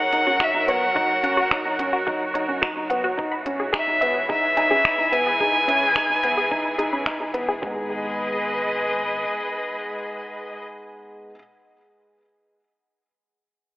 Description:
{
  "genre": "piano and strings electronica",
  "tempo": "108 BPM",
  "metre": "4/4",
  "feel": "straight",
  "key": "G# minor",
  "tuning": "A4 = 440 Hz",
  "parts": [
    { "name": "clear violin", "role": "melody", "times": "0.0-7.1 s", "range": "E5 to G#5", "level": "-21 LUFS", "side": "equal", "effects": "none" },
    { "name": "rich studio string section", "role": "sustained chords", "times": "0.0-10.6 s", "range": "E3 to D#5", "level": "-26 LUFS", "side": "equal", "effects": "none" },
    { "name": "wide unison pluck", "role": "arpeggios", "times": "0.0-7.9 s", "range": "F#4 to B5", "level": "-28 LUFS", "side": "equal", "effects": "sidechain pumping, digital delay" },
    { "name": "warm sub bass", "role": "bass", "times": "0.0-9.3 s", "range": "E1 to G#1", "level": "-50 LUFS", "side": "equal", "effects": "tube saturation, sidechain pumping" },
    { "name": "felt-muted upright piano", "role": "riff", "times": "0.1-11.4 s", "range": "G#3 to G#4", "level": "-28 LUFS", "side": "equal", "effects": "digital delay" },
    { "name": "organic electronic drum kit", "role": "drums", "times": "0.1-7.5 s", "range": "finger snaps, hi-hat", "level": "-26 LUFS", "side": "equal", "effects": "studio reverb" },
    { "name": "electronic kick drum", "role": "drums", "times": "0.4-7.7 s", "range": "none", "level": "-37 LUFS", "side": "equal", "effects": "studio reverb" }
  ],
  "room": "moderate lush hall reverb, RT60 2.7 s",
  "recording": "telephone sound",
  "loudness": "-20 LUFS",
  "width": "side -19 dB against mid",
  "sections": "0.0-7.6 A section; 7.6-9.9 B section",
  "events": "drop 0.0-7.6",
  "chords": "0.0 F#; 3.2 E; 7.6 G#m",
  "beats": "0.41 | 0.96 1.52 2.08 2.63 | 3.19 3.74 4.30 4.85 | 5.41 5.96 6.52 7.08 | 7.63 8.19 8.74 9.30"
}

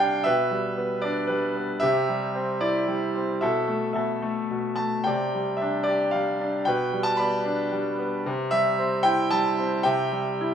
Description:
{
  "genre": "classical, lyrical solo piano",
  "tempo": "113 BPM",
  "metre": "3/4",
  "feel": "rubato",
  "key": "C major",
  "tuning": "A4 = 440 Hz",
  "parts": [
    { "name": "bright concert grand piano", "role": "solo", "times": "0.0-10.5 s", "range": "B2 to B5", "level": "-22 LUFS", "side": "equal", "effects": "none" }
  ],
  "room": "moderate scoring stage reverb, RT60 1.8 s",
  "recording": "recorded in a church or concert hall",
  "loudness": "-22 LUFS",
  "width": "side -8 dB against mid",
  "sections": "0.0-10.5 A section",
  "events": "none",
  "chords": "0.3 G/B; 1.8 Cadd9; 3.4 Esus4/B; 5.1 Csus2; 6.7 G/B; 8.2 C",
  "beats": "| 0.25 0.77 1.29 | 1.82 2.34 2.88 | 3.42 3.95 4.50 | 5.06 5.61 6.14 | 6.66 7.18 7.71 | 8.25 8.77 9.30 | 9.85 10.39"
}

